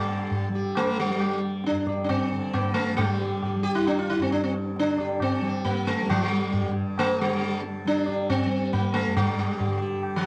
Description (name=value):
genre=indian classical, Hindustani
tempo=135 BPM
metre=7/4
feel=straight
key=G raga bhimpalasi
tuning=A4 = 437 Hz
part: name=sitar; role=melody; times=0.0-10.3 s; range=F3 to G4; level=-28 LUFS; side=equal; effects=none
part: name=tanpura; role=drone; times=0.0-10.3 s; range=G2 to G3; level=-32 LUFS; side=equal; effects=none
part: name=tabla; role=percussion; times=0.3-10.2 s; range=none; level=-33 LUFS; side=equal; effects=none
room=wet recital hall reverb, RT60 1.4 s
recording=dark, warm production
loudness=-26 LUFS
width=mono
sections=0.0-10.3 A section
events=none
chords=none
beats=0.30 0.75 1.20 1.64 2.09 2.54 | 2.98 3.43 3.87 4.32 4.76 5.20 5.65 | 6.09 6.53 6.97 7.41 7.85 8.29 8.73 | 9.16 9.60 10.04